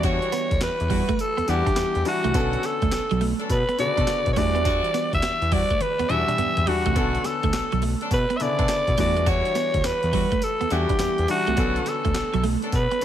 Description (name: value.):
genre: R&B, new jack swing.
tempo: 104 BPM.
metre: 4/4.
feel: swing 65% on 16ths.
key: unclear.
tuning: A4 = 441 Hz.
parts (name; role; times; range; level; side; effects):
raspy alto saxophone; melody; 0.0-13.0 s; F#4 to E5; -24 LUFS; equal; none.
clear concert grand piano; accompaniment; 0.0-13.0 s; C#3 to F#5; -30 LUFS; left 5 dB; none.
clean electric guitar; riff; 0.0-13.0 s; F#3 to D4; -29 LUFS; right 8 dB; analog chorus.
warm horn section; stabs; 0.0-12.8 s; G3 to A4; -34 LUFS; left 1 dB; none.
fat analog bass; bass; 0.0-13.0 s; B1 to B2; -26 LUFS; equal; none.
breakbeat sampler-style drum kit; drums; 0.0-13.0 s; handclaps, hi-hat, kick drum, snare drum, tambourine, toms; -27 LUFS; equal; none.
room: light reverb, digital ambience.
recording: none.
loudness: -20 LUFS.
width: side -10 dB against mid.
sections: 0.0-13.0 A section.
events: drum fill 5.8-7.0.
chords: 0.0 Em9; 2.3 Bm9; 4.4 Em9; 7.0 Bm9; 9.0 Em9; 11.6 Bm9.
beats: | 0.04 0.61 1.19 1.77 | 2.35 2.92 3.50 4.08 | 4.65 5.23 5.81 6.38 | 6.96 7.54 8.11 8.69 | 9.27 9.85 10.42 11.00 | 11.57 12.15 12.73.